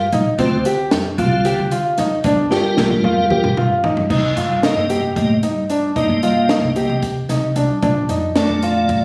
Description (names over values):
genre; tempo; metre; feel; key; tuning
progressive instrumental, band music in an uneven meter; 226 BPM (eighths); 7/8; straight; C dorian; A4 = 440 Hz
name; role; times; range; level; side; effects
clear baby grand piano; arpeggios; 0.0-9.0 s; C4 to G4; -21 LUFS; equal; none
upright bass; bass; 0.1-9.0 s; F1 to D3; -23 LUFS; equal; none
compact cocktail drum kit; drums; 0.1-9.0 s; crash cymbal, hi-hat, kick drum, snare drum, toms; -24 LUFS; equal; none
tonewheel organ; accompaniment; 0.4-9.0 s; Bb2 to Eb5; -23 LUFS; equal; slow rotary speaker
room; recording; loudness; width
moderate studio reverb, RT60 0.9 s; recorded on a phone in the room, studio reverb; -17 LUFS; mono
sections
0.0-4.1 A section; 4.1-9.0 B section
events
drum fill 2.5-4.1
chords
0.4 Dm7; 2.2 Gm7; 4.1 Cm7; 7.8 Bbmaj7